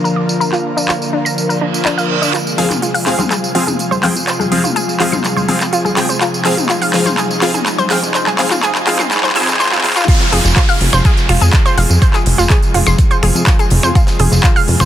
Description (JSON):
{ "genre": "progressive house", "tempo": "124 BPM", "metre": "4/4", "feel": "straight", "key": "F dorian", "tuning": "A4 = 440 Hz", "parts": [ { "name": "airy breathy pad", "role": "sustained chords", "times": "0.0-14.9 s", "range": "C3 to Bb4", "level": "-21 LUFS", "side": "left 1 dB", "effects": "chorus, sidechain pumping" }, { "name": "analog pluck", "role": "arpeggios", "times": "0.0-14.8 s", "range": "D4 to E6", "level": "-18 LUFS", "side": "equal", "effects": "chorus, sidechain pumping, tape echo" }, { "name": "supersaw stab", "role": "stabs", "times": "0.0-9.9 s", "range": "F3 to Ab5", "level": "-19 LUFS", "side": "left 1 dB", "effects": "phaser, sidechain pumping, low-pass filter, tape echo" }, { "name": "big-room dance drum kit", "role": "drums", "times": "0.1-14.9 s", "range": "crash cymbal, finger snaps, handclaps, hi-hat, tambourine", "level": "-18 LUFS", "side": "right 1 dB", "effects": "sidechain pumping on perc, high-pass filter on perc, high-pass filter on snare, sidechain pumping on hats, high-pass filter on hats, sidechain pumping on cymbals, high-pass filter on cymbals" }, { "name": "reverse cymbal, riser and downlifter", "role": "sound effects", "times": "1.6-14.0 s", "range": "none", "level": "-25 LUFS", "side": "right 3 dB", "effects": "none" }, { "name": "plucky analog bass", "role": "bass", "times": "2.6-14.9 s", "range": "F1 to F2", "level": "-15 LUFS", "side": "equal", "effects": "sidechain pumping, high-pass filter" }, { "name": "electronic toms and congas", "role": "percussion", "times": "2.7-9.8 s", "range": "none", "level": "-22 LUFS", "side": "left 4 dB", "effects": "sidechain pumping on toms, sidechain pumping on perc" }, { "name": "electronic kick drum", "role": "drums", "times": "10.1-14.5 s", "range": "none", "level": "-12 LUFS", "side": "equal", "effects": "none" }, { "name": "tight metal drum kit", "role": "drums", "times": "10.1-14.9 s", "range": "hi-hat, snare drum", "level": "-30 LUFS", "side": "left 3 dB", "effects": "none" } ], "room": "light reverb", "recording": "dense, heavily limited modern master, high-pass filter, low-pass filter", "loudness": "-11 LUFS", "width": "side -11 dB against mid", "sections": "0.0-2.3 A section; 2.3-10.1 B section; 10.1-14.9 C section", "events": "filter sweep 0.0-2.3; reverse cymbal 1.6-2.3; build-up 2.3-10.1; drum fill 2.3-10.1; drop 10.1-14.9", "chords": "0.0 Bb; 2.3 Fm" }